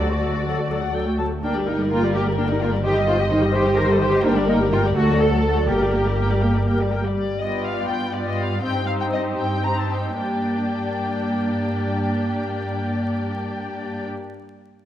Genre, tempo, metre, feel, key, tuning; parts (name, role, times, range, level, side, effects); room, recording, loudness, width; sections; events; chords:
quick classical-period movement for string orchestra; 72-86 BPM (dotted quarters); 6/8; straight; G minor; A4 = 441 Hz
muted symphonic violin section; melody; 0.0-14.1 s; D5 to Bb5; -29 LUFS; left 4 dB
muted symphonic violin section; second line; 0.0-14.1 s; G4 to Eb5; -28 LUFS; left 2 dB
muted symphonic viola section; accompaniment; 0.0-14.1 s; Eb3 to C5; -24 LUFS; equal
muted symphonic cello section; bass; 0.0-14.1 s; G2 to Bb4; -25 LUFS; right 1 dB
muted symphonic double bass section; bass; 0.0-7.0 s; G1 to D2; -23 LUFS; equal
moderate scoring stage reverb, RT60 1.7 s; dark, warm production, vinyl crackle; -19 LUFS; side -11 dB against mid
0.0-7.2 A section; 7.2-10.2 B section; 10.2-13.4 C section
slowing down 6.4-10.2
0.0 D; 1.4 Gm; 2.8 Cm/G; 4.2 Gm; 5.0 D; 5.7 Gm; 7.2 G7; 8.6 Cm/G; 10.2 Gm